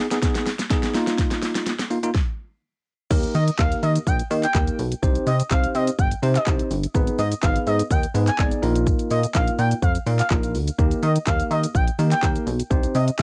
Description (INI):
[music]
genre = dance-pop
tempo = 125 BPM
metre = 4/4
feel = straight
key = Eb major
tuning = A4 = 441 Hz
[part]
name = bell-like tine electric piano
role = accompaniment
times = 0.0-13.2 s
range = Bb3 to D5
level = -28 LUFS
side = equal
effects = sidechain pumping, low-pass filter, cassette tape
[part]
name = pop drum kit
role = drums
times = 0.1-13.2 s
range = crash cymbal, handclaps, hi-hat, kick drum, shaker, snare drum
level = -25 LUFS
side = equal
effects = cassette tape
[part]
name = chorused synth bass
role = bass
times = 3.1-13.2 s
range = G1 to Eb3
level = -24 LUFS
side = equal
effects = sidechain pumping
[part]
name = expressive portamento lead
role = melody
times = 3.3-13.2 s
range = Eb5 to Ab5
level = -28 LUFS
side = equal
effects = chorus, sidechain pumping, cassette tape
[sound]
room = light reverb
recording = home recording on cassette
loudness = -22 LUFS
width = mono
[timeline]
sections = 0.0-3.1 A section; 3.1-13.2 B section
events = build-up 0.0-3.1; drum fill 0.0-2.1; filter sweep on tine electric piano 0.0-3.1; stop 2.1-3.1; drop 3.1-13.2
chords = 0.0 Abm; 0.9 Bbsus4; 3.1 Eb; 5.0 Cm; 6.9 Abm; 8.6 Bbsus4; 10.8 Eb; 12.7 Cm